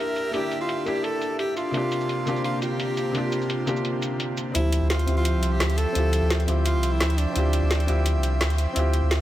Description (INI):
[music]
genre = liquid drum and bass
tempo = 171 BPM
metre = 4/4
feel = swing 54% on 16ths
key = D minor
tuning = A4 = 440 Hz
[part]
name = warm tenor saxophone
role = melody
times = 0.0-8.2 s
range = D4 to Bb4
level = -29 LUFS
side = equal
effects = dub echo
[part]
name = felt-muted upright piano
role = accompaniment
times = 0.0-9.2 s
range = C3 to G4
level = -28 LUFS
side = left 1 dB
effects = low-pass filter
[part]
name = airy breathy pad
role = sustained chords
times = 0.0-9.2 s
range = F3 to G5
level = -31 LUFS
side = right 2 dB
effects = chorus
[part]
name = drum and bass drum kit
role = drums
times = 0.2-9.2 s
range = hi-hat, shaker, snare drum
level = -29 LUFS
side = equal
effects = high-pass filter on hats, low-pass filter on hats, high-pass filter on perc, low-pass filter on perc, high-pass filter on snare, low-pass filter on snare, high-pass filter on room, low-pass filter on room
[part]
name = warm sub bass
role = bass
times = 4.5-9.2 s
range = C2 to D2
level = -22 LUFS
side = equal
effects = none
[sound]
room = light reverb, digital ambience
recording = none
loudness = -22 LUFS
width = side -13 dB against mid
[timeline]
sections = 0.0-4.5 A section; 4.5-9.2 B section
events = build-up 4.5-9.2; filter sweep on felt piano 4.5-9.2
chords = 0.0 Em7b5; 1.7 C9sus4; 4.5 Dm11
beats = | 0.34 0.69 1.04 1.39 | 1.74 2.09 2.44 2.79 | 3.15 3.50 3.85 4.20 | 4.55 4.90 5.25 5.60 | 5.95 6.30 6.66 7.01 | 7.36 7.71 8.06 8.41 | 8.76 9.11